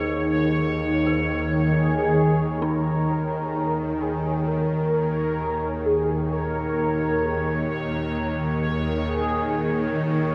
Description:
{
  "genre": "dark ambient drone",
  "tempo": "65 BPM",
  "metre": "4/4",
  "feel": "straight",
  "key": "unclear",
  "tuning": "A4 = 440 Hz",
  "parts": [
    { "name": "deep dark ambient pad", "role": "sustained chords", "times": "5.5-10.3 s", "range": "Bb3 to Bb4", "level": "-37 LUFS", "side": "equal", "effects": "chorus, built-in reverb" },
    { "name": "dark detuned synth bell", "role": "arpeggios", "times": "0.0-10.3 s", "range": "Eb4 to Ab4", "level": "-36 LUFS", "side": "equal", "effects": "chorus, tape echo" },
    { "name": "bowed-like drone", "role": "drone", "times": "0.0-10.3 s", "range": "Eb2 to Eb3", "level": "-26 LUFS", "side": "equal", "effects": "built-in reverb" },
    { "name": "bubbling stepped-filter texture", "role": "texture", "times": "0.0-10.3 s", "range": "Db5", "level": "-34 LUFS", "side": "equal", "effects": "chorus, built-in reverb" },
    { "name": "mellow horn-like synth lead", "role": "melody", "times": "1.7-10.0 s", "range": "Ab4 to Bb4", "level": "-29 LUFS", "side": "equal", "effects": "phaser, ensemble chorus, tape echo" }
  ],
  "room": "wet plate reverb, RT60 3.3 s",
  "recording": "echo-heavy mix, cassette tape",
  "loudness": "-24 LUFS",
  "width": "mono",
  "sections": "0.0-2.6 A section; 2.6-10.3 B section",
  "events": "none",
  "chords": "0.0 Eb5",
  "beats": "0.78 1.70 | 2.62 3.55 4.47 5.39 | 6.32 7.24 8.16 9.09 | 10.01"
}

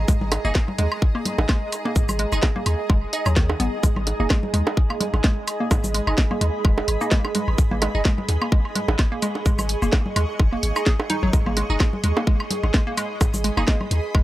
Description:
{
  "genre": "minimal techno",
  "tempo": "128 BPM",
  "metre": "4/4",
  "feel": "swing 55% on 16ths",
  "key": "G# minor",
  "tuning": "A4 = 442 Hz",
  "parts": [
    { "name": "punchy sub bass", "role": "bass", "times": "0.0-14.2 s", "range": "F#1 to D#2", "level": "-23 LUFS", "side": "equal", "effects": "sidechain pumping" },
    { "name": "granular cloud pad", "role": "texture", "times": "0.0-14.2 s", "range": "G#4 to C#6", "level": "-29 LUFS", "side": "right 2 dB", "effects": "built-in reverb, sidechain pumping" },
    { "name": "hollow square pluck", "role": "riff", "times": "0.1-14.2 s", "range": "D#3 to G#4", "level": "-28 LUFS", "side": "equal", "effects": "chorus, sidechain pumping, tape echo" },
    { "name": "electronic kick drum", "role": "drums", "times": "0.1-14.2 s", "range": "none", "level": "-19 LUFS", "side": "equal", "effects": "none" },
    { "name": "garage drum kit", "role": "drums", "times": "0.1-14.0 s", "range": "cabasa, hi-hat, snare drum", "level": "-25 LUFS", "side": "equal", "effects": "none" },
    { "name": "congas, bongos, claves and woodblock", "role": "percussion", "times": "0.2-14.2 s", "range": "none", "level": "-28 LUFS", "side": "right 1 dB", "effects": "analog delay" },
    { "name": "wavetable chord stab", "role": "stabs", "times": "0.4-13.6 s", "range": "D#4 to D#5", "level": "-30 LUFS", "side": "right 2 dB", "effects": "phaser, analog delay" }
  ],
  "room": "little or no reverb",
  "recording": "dry, gritty hardware recording",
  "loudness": "-19 LUFS",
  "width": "side -15 dB against mid",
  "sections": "0.0-14.2 A section",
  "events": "none",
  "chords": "0.0 G#5",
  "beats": "| 0.08 0.55 1.02 1.49 | 1.96 2.43 2.90 3.37 | 3.83 4.30 4.77 5.24 | 5.71 6.18 6.65 7.12 | 7.58 8.05 8.52 8.99 | 9.46 9.93 10.40 10.87 | 11.33 11.80 12.27 12.74 | 13.21 13.68 14.15"
}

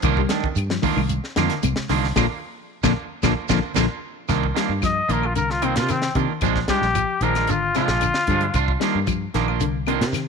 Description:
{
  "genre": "afrobeat",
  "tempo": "113 BPM",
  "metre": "4/4",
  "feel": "straight",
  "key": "C minor",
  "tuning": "A4 = 441 Hz",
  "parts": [
    { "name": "clean electric guitar", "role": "arpeggios", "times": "0.0-10.3 s", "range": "Bb2 to G3", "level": "-26 LUFS", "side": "left 14 dB", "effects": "none" },
    { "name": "electric guitar at the edge of break-up", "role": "stabs", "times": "0.0-10.0 s", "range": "Eb3 to F4", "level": "-25 LUFS", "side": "right 13 dB", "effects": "slapback echo" },
    { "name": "fingered electric bass", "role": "bass", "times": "0.0-10.3 s", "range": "Ab1 to C3", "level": "-25 LUFS", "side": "equal", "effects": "none" },
    { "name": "tight funk drum kit", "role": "drums", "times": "0.0-10.3 s", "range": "hi-hat, kick drum, snare drum", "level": "-28 LUFS", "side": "left 1 dB", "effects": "none" },
    { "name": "claves", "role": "percussion", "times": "0.0-10.3 s", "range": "none", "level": "-32 LUFS", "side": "left 14 dB", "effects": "none" },
    { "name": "congas", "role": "percussion", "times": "0.0-3.9 s", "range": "none", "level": "-30 LUFS", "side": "right 14 dB", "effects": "none" },
    { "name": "shekere", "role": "percussion", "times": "0.0-10.3 s", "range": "none", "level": "-30 LUFS", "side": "right 7 dB", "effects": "none" },
    { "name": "warm trumpet", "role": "melody", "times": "4.8-8.8 s", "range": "C4 to Eb5", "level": "-23 LUFS", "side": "left 3 dB", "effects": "slapback echo" }
  ],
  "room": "small room ambience",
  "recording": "1960s-style stereo with parts hard left and right",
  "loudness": "-19 LUFS",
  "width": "side -5 dB against mid",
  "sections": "0.0-4.3 A section; 4.3-10.3 B section",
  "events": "band accent 2.2-4.3; drum fill 3.8-4.3; trumpet solo 4.3-10.3",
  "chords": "0.0 Cm11; 2.2 Bb; 4.3 Cm11; 6.4 Bb7; 8.5 Cm11",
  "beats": "| 0.04 0.57 1.10 1.63 | 2.17 2.70 3.23 3.76 | 4.29 4.82 5.35 5.89 | 6.42 6.95 7.48 8.01 | 8.54 9.08 9.61 10.14"
}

